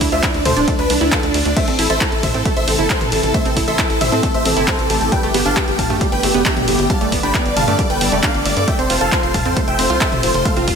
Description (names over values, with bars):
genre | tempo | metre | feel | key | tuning
uplifting trance | 135 BPM | 4/4 | straight | A minor | A4 = 438 Hz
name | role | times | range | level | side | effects
big supersaw lead | melody | 0.0-10.8 s | D4 to B5 | -20 LUFS | equal | sidechain pumping, ping-pong delay
warm baby grand piano | second line | 0.0-10.8 s | D4 to B5 | -25 LUFS | equal | sidechain pumping, analog delay
wide unison pluck | arpeggios | 0.0-10.7 s | G3 to A4 | -23 LUFS | right 4 dB | cassette tape, sidechain pumping, analog delay
tight sequencer bass | bass | 0.0-10.8 s | D1 to A2 | -23 LUFS | equal | sidechain pumping
electronic kick drum | drums | 0.0-10.8 s | none | -21 LUFS | equal | none
punchy analog drum machine | drums | 0.0-10.8 s | crash cymbal, handclaps, hi-hat, ride cymbal, toms | -21 LUFS | equal | none
lush unison pad | sustained chords | 2.2-10.8 s | C3 to A4 | -24 LUFS | equal | chorus, sidechain pumping
room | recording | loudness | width
moderate lush hall reverb, RT60 1.9 s, digital ambience | dreamy mix soaked in reverb | -14 LUFS | side -6 dB against mid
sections
0.0-10.8 A section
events
none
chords
0.0 D5; 1.6 Am; 5.1 Gadd9; 8.7 F